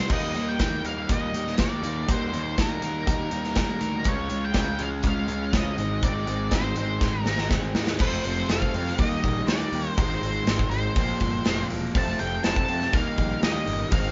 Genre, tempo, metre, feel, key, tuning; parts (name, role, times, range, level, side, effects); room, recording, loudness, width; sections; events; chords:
classic rock; 122 BPM; 4/4; straight; A4 = 440 Hz
octave-fuzz lead guitar; melody; 0.0-14.1 s; Bb4 to A5; -33 LUFS; equal; distortion
crunchy overdriven guitar; riff; 0.0-14.1 s; F2 to F4; -36 LUFS; equal
overdriven semi-hollow guitar; riff; 0.0-14.1 s; F2 to F4; -35 LUFS; equal
fuzz picked electric bass; bass; 0.1-14.1 s; E1 to F2; -33 LUFS; equal; overdrive
big rock drum kit; drums; 0.1-14.0 s; crash cymbal, hi-hat, kick drum, snare drum; -29 LUFS; equal
picked acoustic archtop guitar; accompaniment; 4.1-14.1 s; F2 to A4; -39 LUFS; equal
moderate small room ambience, RT60 0.5 s; band playing live in one room, nothing above 7.6 kHz; -25 LUFS; mono
0.1-8.0 A section; 8.0-14.1 B section
drum fill 7.0-8.0
0.1 Eb; 4.1 Db; 5.8 Ab; 8.0 F; 9.0 Eb; 10.0 Ab6; 11.0 Bbsus2; 11.9 F; 12.9 Eb